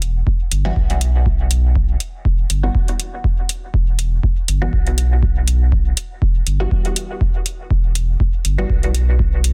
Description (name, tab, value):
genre	dub techno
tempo	121 BPM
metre	4/4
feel	swing 54% on 16ths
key	E minor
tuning	A4 = 439 Hz
part	filtered dub chord stab	stabs	0.0-8.7 s	E3 to F#4	-30 LUFS	equal	phaser, sidechain pumping, dub echo
part	warm sub bass	bass	0.0-9.5 s	E1 to B1	-19 LUFS	equal	sidechain pumping
part	electronic hi-hat	drums	0.0-9.5 s	none	-24 LUFS	equal	none
part	electronic kick drum	drums	0.3-9.3 s	none	-21 LUFS	equal	none
room	little or no reverb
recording	dense, heavily limited modern master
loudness	-18 LUFS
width	mono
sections	0.0-9.5 A section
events	none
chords	0.0 Emadd9